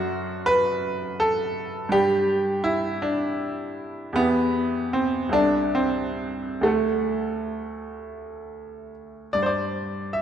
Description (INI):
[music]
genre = classical, romantic character piece for solo piano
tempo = 43-56 BPM (dotted quarters)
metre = 6/8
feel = rubato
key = G major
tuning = A4 = 440 Hz
[part]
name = clear baby grand piano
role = solo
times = 0.0-10.2 s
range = C2 to C6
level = -22 LUFS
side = right 1 dB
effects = none
[sound]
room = wet concert hall reverb, RT60 2.1 s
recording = none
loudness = -22 LUFS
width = side -9 dB against mid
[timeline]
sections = 0.0-9.3 A section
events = none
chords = 0.0 D7/F#; 1.9 G; 4.2 Em; 5.3 Am/C; 6.7 D; 9.3 G5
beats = 0.86 | 1.94 3.04 | 4.17 5.35 | 6.65 7.99 | 9.34